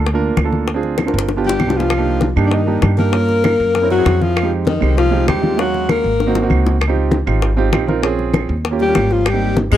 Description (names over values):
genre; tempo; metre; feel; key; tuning
Afro-Cuban jazz; 196 BPM; 4/4; straight; C minor; A4 = 440 Hz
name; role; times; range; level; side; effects
warm concert grand piano; accompaniment; 0.0-9.8 s; Ab3 to F5; -20 LUFS; right 6 dB; none
upright bass; bass; 0.0-9.8 s; G1 to Ab2; -18 LUFS; equal; none
bongos; percussion; 0.1-9.7 s; none; -22 LUFS; left 6 dB; none
congas; percussion; 0.1-9.7 s; none; -21 LUFS; left 2 dB; none
claves; percussion; 0.4-9.8 s; none; -29 LUFS; right 14 dB; none
breathy alto saxophone; melody; 1.5-6.5, 8.8-9.8 s; D4 to Bb4; -19 LUFS; equal; none
warm tenor saxophone; second line; 1.5-6.5, 8.8-9.8 s; D3 to Bb3; -22 LUFS; left 12 dB; none
room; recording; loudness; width
small room ambience; dry, close 1970s-style studio recording; -13 LUFS; side -12 dB against mid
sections
0.0-1.9 A section; 1.9-9.8 B section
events
drum fill 1.0-1.9, 6.2-6.8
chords
0.0 Gm7 (rootless); 0.7 Dm7b5; 1.3 G7; 1.9 Cm7; 3.1 Gm7b5; 3.7 F#7#11; 4.4 Fm9; 5.6 Ebm11; 6.2 Ab9; 6.8 Dbmaj9#11; 8.0 Bbm9; 8.6 Eb7; 9.3 Abmaj9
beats
0.07 0.37 | 0.68 0.99 1.29 1.60 | 1.91 2.22 2.52 2.83 | 3.14 3.44 3.75 4.05 | 4.36 4.67 4.97 5.28 | 5.59 5.89 6.20 6.50 | 6.81 7.12 7.42 7.73 | 8.03 8.34 8.64 8.95 | 9.26 9.56